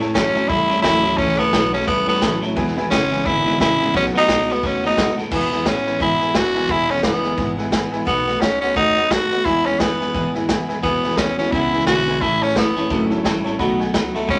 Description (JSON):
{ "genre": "rockabilly", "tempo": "174 BPM", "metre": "4/4", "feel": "swing 59% on 8ths", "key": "E major", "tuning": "A4 = 440 Hz", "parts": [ { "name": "picked steel-string acoustic guitar", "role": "accompaniment", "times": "0.0-14.4 s", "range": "E2 to F#4", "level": "-26 LUFS", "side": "equal", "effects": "none" }, { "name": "tack piano", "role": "accompaniment", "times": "0.0-14.4 s", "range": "B4 to B5", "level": "-32 LUFS", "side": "equal", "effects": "none" }, { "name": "electric guitar at the edge of break-up", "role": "riff", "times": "0.0-5.3, 10.8-14.4 s", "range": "E2 to A3", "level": "-27 LUFS", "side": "equal", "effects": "none" }, { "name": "upright bass", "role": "bass", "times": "0.0-14.4 s", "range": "E1 to A2", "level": "-36 LUFS", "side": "equal", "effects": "none" }, { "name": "vintage drum kit", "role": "drums", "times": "0.0-14.4 s", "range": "crash cymbal, hi-hat, kick drum, snare drum", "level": "-26 LUFS", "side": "equal", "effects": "none" }, { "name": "raspy tenor saxophone", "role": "melody", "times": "0.1-14.4 s", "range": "A3 to F#4", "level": "-21 LUFS", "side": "equal", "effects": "none" } ], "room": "moderate club ambience, RT60 0.5 s", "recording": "none", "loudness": "-19 LUFS", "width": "mono", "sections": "0.0-5.3 A section; 5.3-14.4 B section", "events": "none", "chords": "0.0 A; 2.6 E; 3.9 B7; 5.3 E; 8.1 B7; 9.5 E; 12.2 A; 13.6 B7" }